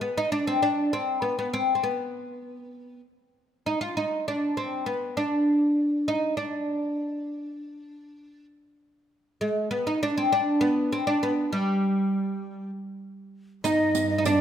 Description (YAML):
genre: Persian modal ensemble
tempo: 99 BPM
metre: 4/4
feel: straight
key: unclear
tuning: A4 = 440 Hz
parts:
  - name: oud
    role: melody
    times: 0.0-14.4 s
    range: G3 to F4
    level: -24 LUFS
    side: equal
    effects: none
  - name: riq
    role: percussion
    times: 13.6-14.4 s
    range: none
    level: -32 LUFS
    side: right 7 dB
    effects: none
  - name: breathy bright ney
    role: second line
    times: 13.7-14.4 s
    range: D5 to Eb5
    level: -26 LUFS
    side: left 2 dB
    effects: none
  - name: warm double bass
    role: drone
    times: 13.7-14.4 s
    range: G2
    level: -30 LUFS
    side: right 4 dB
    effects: none
room: light reverb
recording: minimal, uncompressed stereo recording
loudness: -24 LUFS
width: side -9 dB against mid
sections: 0.0-13.6 A section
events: none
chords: none